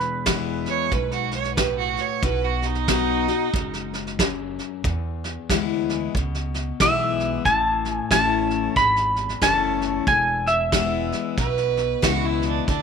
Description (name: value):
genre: honky-tonk and classic country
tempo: 92 BPM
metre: 4/4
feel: swing 60% on 8ths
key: unclear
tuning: A4 = 441 Hz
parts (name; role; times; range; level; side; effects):
- twangy electric guitar; melody; 0.0-1.9, 6.8-11.7 s; B4 to B5; -21 LUFS; equal; none
- picked steel-string acoustic guitar; accompaniment; 0.0-12.8 s; E2 to F#4; -27 LUFS; left 12 dB; none
- upright bass; bass; 0.0-12.8 s; E1 to E2; -29 LUFS; right 1 dB; none
- soft brush drum kit; drums; 0.0-12.8 s; hi-hat, kick drum, snare drum; -25 LUFS; right 2 dB; none
- clear fiddle; second line; 0.7-3.9, 11.4-12.8 s; D4 to C#5; -25 LUFS; right 13 dB; none
room: moderate spring reverb, RT60 2.6 s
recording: 1960s-style stereo with parts hard left and right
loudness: -20 LUFS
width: side -6 dB against mid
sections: 0.0-12.8 A section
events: none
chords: 0.0 E; 2.2 B; 4.8 E; 7.5 A; 10.1 E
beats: 0.27 0.92 1.57 | 2.23 2.88 3.54 4.19 | 4.84 5.50 6.15 6.80 | 7.46 8.11 8.76 9.41 | 10.07 10.72 11.38 12.03 | 12.68